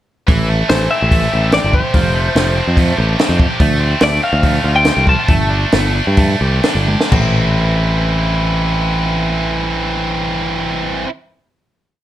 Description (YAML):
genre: indie rock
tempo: 122-145 BPM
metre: 4/4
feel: straight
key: A minor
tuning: A4 = 440 Hz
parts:
  - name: heavy high-gain guitar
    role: riff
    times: 0.3-11.1 s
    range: E3 to G4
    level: -18 LUFS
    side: right 1 dB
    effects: distortion
  - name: picked electric bass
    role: bass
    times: 0.3-11.0 s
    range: F1 to G2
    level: -16 LUFS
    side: equal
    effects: none
  - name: compact cocktail drum kit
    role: drums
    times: 0.3-7.2 s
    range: crash cymbal, hi-hat, kick drum, snare drum, toms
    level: -16 LUFS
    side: equal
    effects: none
  - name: twelve-string electric guitar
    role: melody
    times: 0.7-6.6 s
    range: C5 to A5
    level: -18 LUFS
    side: left 2 dB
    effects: tape echo
room: light reverb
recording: none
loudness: -12 LUFS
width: side -13 dB against mid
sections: 0.3-7.1 interlude; 7.1-11.0 final chord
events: slowing down 3.6-7.1; drum fill 6.9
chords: 0.3 Am7; 1.9 Fadd9; 3.6 Dm7; 5.3 Gsus2; 7.1 Am